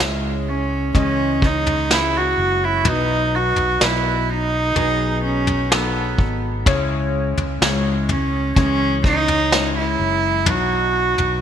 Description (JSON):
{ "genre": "pop ballad", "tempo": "63 BPM", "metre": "4/4", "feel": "straight", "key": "unclear", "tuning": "A4 = 437 Hz", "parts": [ { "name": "warm cello", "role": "melody", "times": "0.0-11.4 s", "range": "G#3 to F#4", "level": "-20 LUFS", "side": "right 2 dB", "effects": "none" }, { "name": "warm concert grand piano", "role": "accompaniment", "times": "0.0-11.4 s", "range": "B2 to E5", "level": "-25 LUFS", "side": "left 4 dB", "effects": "analog chorus" }, { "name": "fingered electric bass", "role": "bass", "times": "0.0-11.4 s", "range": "F#1 to C#2", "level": "-24 LUFS", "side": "equal", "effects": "none" }, { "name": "vintage brush drum kit", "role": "drums", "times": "0.0-11.4 s", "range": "kick drum, snare drum, toms", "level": "-20 LUFS", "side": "equal", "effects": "gated reverb" } ], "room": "light reverb, small room ambience", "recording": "bright 1980s-style digital production", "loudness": "-16 LUFS", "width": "side -8 dB against mid", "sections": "0.0-11.4 A section", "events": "none", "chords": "0.0 C#m; 2.9 B; 6.7 C#m; 10.5 B", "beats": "0.95 1.90 | 2.85 3.80 4.76 5.71 | 6.66 7.61 8.56 9.52 | 10.47" }